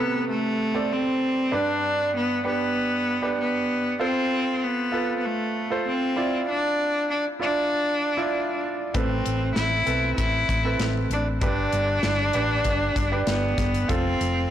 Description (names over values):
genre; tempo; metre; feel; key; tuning
piano-driven pop; 97 BPM; 4/4; straight; unclear; A4 = 440 Hz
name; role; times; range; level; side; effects
clear cello; melody; 0.0-14.5 s; A3 to E4; -24 LUFS; left 1 dB; none
clear concert grand piano; accompaniment; 0.0-14.5 s; G2 to D5; -28 LUFS; right 3 dB; none
hollow-body short-scale fingered electric bass; bass; 8.9-14.5 s; F1 to B1; -27 LUFS; left 1 dB; none
modern studio drum kit; drums; 8.9-14.4 s; hi-hat, kick drum, snare drum; -29 LUFS; left 1 dB; none
room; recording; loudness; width
light reverb, small room ambience; blown-out, overdriven recording, overdrive; -22 LUFS; side -10 dB against mid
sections
0.0-14.5 A section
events
none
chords
0.0 Amadd9; 1.5 G; 4.0 F; 6.2 Dmadd9; 8.9 Amadd9; 11.4 G; 13.9 F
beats
0.29 0.91 | 1.52 2.14 2.76 3.38 | 4.00 4.62 5.24 5.86 | 6.47 7.09 7.71 8.33 | 8.95 9.57 10.19 10.80 | 11.42 12.04 12.66 13.28 | 13.90